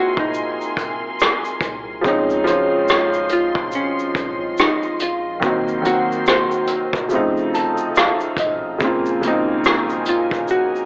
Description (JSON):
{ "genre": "lo-fi hip hop", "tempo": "71 BPM", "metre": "4/4", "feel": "swing 59% on 16ths", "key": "Bb minor", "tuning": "A4 = 440 Hz", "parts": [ { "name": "archtop guitar, miked and amplified", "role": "melody", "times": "0.0-10.9 s", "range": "Db4 to C5", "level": "-21 LUFS", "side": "equal", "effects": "low-pass filter, cassette tape" }, { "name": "felt-muted upright piano", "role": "accompaniment", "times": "0.0-10.9 s", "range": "Db3 to A5", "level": "-19 LUFS", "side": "equal", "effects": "cassette tape, low-pass filter" }, { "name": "warm studio string section", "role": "sustained chords", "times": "0.0-10.9 s", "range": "F4 to C6", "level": "-28 LUFS", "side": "equal", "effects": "low-pass filter" }, { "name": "vintage brush drum kit", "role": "drums", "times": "0.2-10.9 s", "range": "hi-hat, kick drum, rim click, shaker", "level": "-20 LUFS", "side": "equal", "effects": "cassette tape" }, { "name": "saturated sub bass", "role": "bass", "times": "1.6-10.5 s", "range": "F1 to Db2", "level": "-41 LUFS", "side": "equal", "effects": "transformer saturation" } ], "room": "moderate spring reverb, RT60 2.2 s", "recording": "home recording on cassette, AM radio sound", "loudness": "-16 LUFS", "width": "side -34 dB against mid", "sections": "0.0-10.9 A section", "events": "felt piano fill 7.1-8.8", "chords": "0.0 Ab9; 2.0 Dbmaj9; 5.4 Cm7b5; 7.1 F7b13; 8.8 Bbm7" }